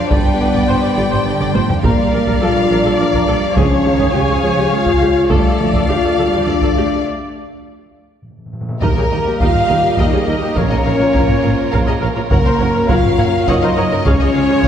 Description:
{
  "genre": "cinematic, epic orchestral film score",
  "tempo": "103 BPM",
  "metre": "3/4",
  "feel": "straight",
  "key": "unclear",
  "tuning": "A4 = 440 Hz",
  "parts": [
    { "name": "warm symphonic violin section", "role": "melody", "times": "0.0-14.7 s", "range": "A4 to Ab5", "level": "-26 LUFS", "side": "left 4 dB", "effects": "none" },
    { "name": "warm symphonic violin section", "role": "second line", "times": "0.0-14.7 s", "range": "Bb4 to G5", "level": "-23 LUFS", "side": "left 3 dB", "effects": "none" },
    { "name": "mellow French horn section", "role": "sustained chords", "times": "0.0-14.7 s", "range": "A3 to Ab4", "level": "-18 LUFS", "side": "left 2 dB", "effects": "none" },
    { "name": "mellow trombone section", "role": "sustained chords", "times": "0.0-14.7 s", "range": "F3 to D4", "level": "-25 LUFS", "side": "right 2 dB", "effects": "none" },
    { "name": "rich symphonic cello section", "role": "bass", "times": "0.0-14.7 s", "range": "Db2 to A3", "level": "-24 LUFS", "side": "right 2 dB", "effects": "none" },
    { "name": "rich symphonic viola section", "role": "accompaniment", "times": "0.1-14.7 s", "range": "F4 to F5", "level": "-22 LUFS", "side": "equal", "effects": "none" },
    { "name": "mellow tuba", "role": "bass", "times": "0.1-14.7 s", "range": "Gb1 to Eb2", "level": "-24 LUFS", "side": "right 3 dB", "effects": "none" },
    { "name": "rich symphonic double bass section", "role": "bass", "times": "0.1-14.7 s", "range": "Gb1 to Eb2", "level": "-23 LUFS", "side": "right 2 dB", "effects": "none" },
    { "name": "taiko ensemble", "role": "drums", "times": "0.1-14.7 s", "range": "none", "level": "-19 LUFS", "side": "equal", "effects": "none" },
    { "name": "timpani", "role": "percussion", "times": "8.2-11.4 s", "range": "Bb2", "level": "-27 LUFS", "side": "right 1 dB", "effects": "none" },
    { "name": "rich symphonic string section", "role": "sustained chords", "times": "8.8-14.7 s", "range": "Gb3 to Eb5", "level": "-25 LUFS", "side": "equal", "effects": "none" },
    { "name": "mellow trumpet section", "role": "stabs", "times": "8.8-14.7 s", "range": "Bb4 to F5", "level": "-21 LUFS", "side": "equal", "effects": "none" }
  ],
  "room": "wet scoring stage reverb, RT60 1.9 s",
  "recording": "heard from further back in the room",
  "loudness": "-12 LUFS",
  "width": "side -9 dB against mid",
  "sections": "0.0-8.8 A section; 8.8-14.7 B section",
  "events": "drum fill 1.4-1.8, 8.4-8.8; break 7.0-8.8; timpani fill 8.2-8.8",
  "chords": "0.1 G; 1.8 Bb; 3.6 Db; 5.3 Dm; 7.0 N.C.; 8.8 Eb; 10.6 Bbm; 12.3 Gb; 14.1 Db"
}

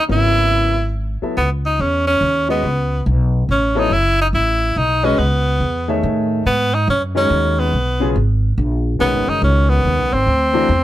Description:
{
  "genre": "modal jazz",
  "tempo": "142 BPM",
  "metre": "3/4",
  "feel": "swing 65% on 8ths",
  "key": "unclear",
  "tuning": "A4 = 442 Hz",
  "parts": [
    { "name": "bright tenor saxophone", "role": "melody", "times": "0.0-10.8 s", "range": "B3 to Fb4", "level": "-17 LUFS", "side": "equal", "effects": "none" },
    { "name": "clear grand piano", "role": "accompaniment", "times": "0.1-10.7 s", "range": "Db3 to Fb5", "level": "-21 LUFS", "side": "left 3 dB", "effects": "none" },
    { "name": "upright bass", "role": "bass", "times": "0.1-10.8 s", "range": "F#1 to A2", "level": "-18 LUFS", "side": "equal", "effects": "none" }
  ],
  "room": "light reverb",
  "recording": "none",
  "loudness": "-14 LUFS",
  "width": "side -14 dB against mid",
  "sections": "0.0-1.4 A section; 1.4-10.8 B section",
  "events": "none",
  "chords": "0.0 Dbm7; 1.4 F#m11; 6.5 G#m11; 10.3 D7"
}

